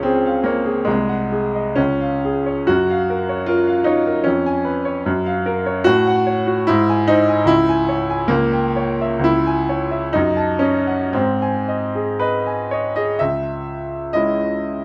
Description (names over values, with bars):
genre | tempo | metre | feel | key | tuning
classical, romantic character piece for solo piano | 56-79 BPM | 2/4 | rubato | Db major, C# minor from 5.9 s | A4 = 440 Hz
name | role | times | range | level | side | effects
bright baby grand piano | solo | 0.0-14.8 s | C2 to A5 | -19 LUFS | equal | none
room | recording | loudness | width
moderate recital hall reverb, RT60 1.4 s | close, detailed microphones | -19 LUFS | mono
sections
0.0-13.2 A section; 13.2-14.8 B section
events
none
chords
0.0 Db; 0.9 Ab7/C; 1.8 Db; 2.7 Gbmaj7; 4.3 Db7/F; 5.1 Gbmaj7; 5.9 F#m/A; 6.7 G#; 7.5 C#m; 8.3 C#dim7; 9.3 C#m; 10.2 D#dim/F#; 11.1 G#; 13.2 C#m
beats
0.05 | 0.88 1.78 | 2.69 3.48 | 4.25 5.06 | 5.86 6.68 | 7.49 8.30 | 9.26 10.15 | 11.13 12.19 | 13.20 14.14